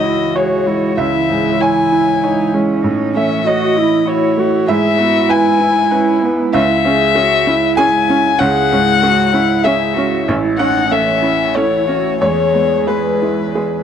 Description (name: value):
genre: neoclassical piano and strings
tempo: 96 BPM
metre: 3/4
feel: rubato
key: unclear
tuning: A4 = 440 Hz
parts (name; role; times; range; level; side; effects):
- muted violin; melody; 0.0-13.8 s; B4 to G#5; -16 LUFS; left 7 dB; none
- muted cello; second line; 0.0-13.8 s; B3 to G#4; -20 LUFS; right 5 dB; none
- clear grand piano; accompaniment; 0.0-13.8 s; A1 to G#5; -18 LUFS; right 3 dB; none
- muted viola; accompaniment; 0.0-13.6 s; G#3 to F#4; -19 LUFS; right 2 dB; none
- airy breathy pad; sustained chords; 0.0-13.8 s; E3 to C#5; -23 LUFS; equal; chorus
room: small room ambience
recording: dry, close 1970s-style studio recording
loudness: -12 LUFS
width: side -8 dB against mid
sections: 0.0-13.8 A section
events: none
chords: 0.0 C#m; 2.8 A; 4.7 E/G#; 6.5 C#m; 10.3 A; 12.2 E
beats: 0.35 | 0.98 1.61 2.23 | 2.85 3.47 4.08 | 4.69 5.31 5.92 | 6.54 7.16 7.78 | 8.40 9.02 9.65 | 10.28 10.91 11.56 | 12.21 12.88 13.55